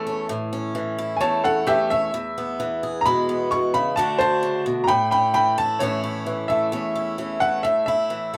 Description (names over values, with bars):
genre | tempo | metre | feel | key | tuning
country | 131 BPM | 4/4 | straight | A major | A4 = 440 Hz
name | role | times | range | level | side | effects
bright upright piano | melody | 0.0-8.4 s | G4 to C#6 | -23 LUFS | equal | none
picked swing-style acoustic guitar | accompaniment | 0.0-8.4 s | E2 to G#4 | -27 LUFS | equal | none
room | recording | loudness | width
light reverb | none | -22 LUFS | mono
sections
0.0-5.8 A section; 5.8-8.4 B section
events
upright piano solo 0.0-5.8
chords
0.0 A; 2.1 E; 4.0 D; 4.9 A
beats
| 0.29 0.75 1.21 1.67 | 2.13 2.59 3.05 3.51 | 3.97 4.42 4.88 5.34 | 5.80 6.26 6.72 7.18 | 7.64 8.10